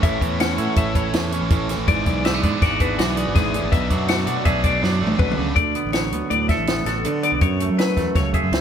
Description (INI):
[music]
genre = math rock and midwest emo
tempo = 162 BPM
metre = 5/4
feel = straight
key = unclear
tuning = A4 = 442 Hz
[part]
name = twangy electric guitar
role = accompaniment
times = 0.0-8.6 s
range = F#2 to A4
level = -24 LUFS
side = right 6 dB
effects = none
[part]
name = twelve-string electric guitar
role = arpeggios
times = 0.0-8.6 s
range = F#4 to F#5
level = -24 LUFS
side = left 10 dB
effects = spring reverb
[part]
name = biting overdriven guitar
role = riff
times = 0.0-5.6 s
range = B2 to D5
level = -26 LUFS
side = right 1 dB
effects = none
[part]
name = fuzz fingered electric bass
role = bass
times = 0.0-8.6 s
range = G#1 to F#3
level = -25 LUFS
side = equal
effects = overdrive
[part]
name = compact cocktail drum kit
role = drums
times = 0.0-8.6 s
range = hi-hat, kick drum, snare drum, toms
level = -22 LUFS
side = equal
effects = none
[sound]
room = light reverb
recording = band playing live in one room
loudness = -18 LUFS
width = side -8 dB against mid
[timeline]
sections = 0.0-5.6 A section; 5.6-8.6 B section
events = drum fill 4.8-5.6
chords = 0.0 A; 1.9 E9/G#; 3.7 Bm7; 5.6 D69; 7.4 F#m11